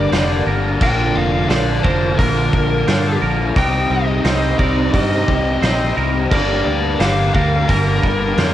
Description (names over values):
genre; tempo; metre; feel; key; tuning
rock, shoegaze and dream pop; 87 BPM; 4/4; straight; G minor; A4 = 440 Hz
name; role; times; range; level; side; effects
biting lead guitar; melody; 0.0-8.5 s; Bb4 to G5; -22 LUFS; equal; overdrive, analog delay
string machine, full ensemble; sustained chords; 0.0-8.5 s; D3 to G5; -28 LUFS; equal; none
twangy electric guitar; arpeggios; 0.0-8.5 s; Bb4 to C5; -25 LUFS; right 7 dB; analog chorus, cassette tape, analog delay
biting overdriven guitar; riff; 0.0-8.5 s; G2 to Eb4; -20 LUFS; left 6 dB; lush chorus, cassette tape
overdriven semi-hollow guitar; riff; 0.0-8.5 s; G2 to Eb4; -23 LUFS; right 6 dB; reverse reverb, cassette tape
fingered electric bass; bass; 0.0-8.5 s; F1 to G2; -21 LUFS; equal; none
loose indie drum kit; drums; 0.1-8.5 s; crash cymbal, hi-hat, kick drum, snare drum; -20 LUFS; equal; cassette tape
room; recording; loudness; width
light reverb; home recording on cassette; -14 LUFS; side -12 dB against mid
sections
0.0-8.5 A section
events
none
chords
0.0 Gm; 3.6 Cm; 6.3 Gm